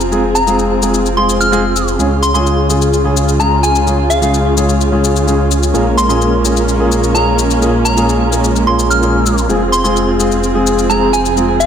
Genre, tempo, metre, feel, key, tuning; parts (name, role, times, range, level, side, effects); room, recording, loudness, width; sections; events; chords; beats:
EDM, festival progressive house; 128 BPM; 4/4; straight; F minor; A4 = 440 Hz
warm studio string section; sustained chords; 0.0-11.7 s; Db3 to Ab4; -21 LUFS; right 1 dB
supersaw chords; riff; 0.0-11.7 s; Ab3 to Bb4; -16 LUFS; equal; low-pass filter, digital delay
wide detuned saw bass; bass; 0.0-11.7 s; F1 to Db2; -17 LUFS; equal; chorus
shaker; drums; 0.0-11.7 s; -22 LUFS; left 8 dB
warm concert grand piano; accompaniment; 0.1-11.5 s; Bb2 to Ab4; -16 LUFS; left 2 dB; vintage 12-bit sampler grit, digital delay
soft synth bell; melody; 0.3-11.7 s; F5 to F6; -17 LUFS; right 1 dB; chorus, phaser, digital delay
moderate lush hall reverb, RT60 1.7 s, digital ambience; -10 LUFS; side -8 dB against mid
0.0-11.7 A section
0.0 Fm; 2.0 Db; 5.7 Bbm7; 9.5 Fm
| 0.12 0.58 1.05 1.52 | 1.99 2.46 2.93 3.40 | 3.87 4.33 4.80 5.27 | 5.74 6.21 6.68 7.15 | 7.62 8.08 8.55 9.02 | 9.49 9.96 10.43 10.90 | 11.37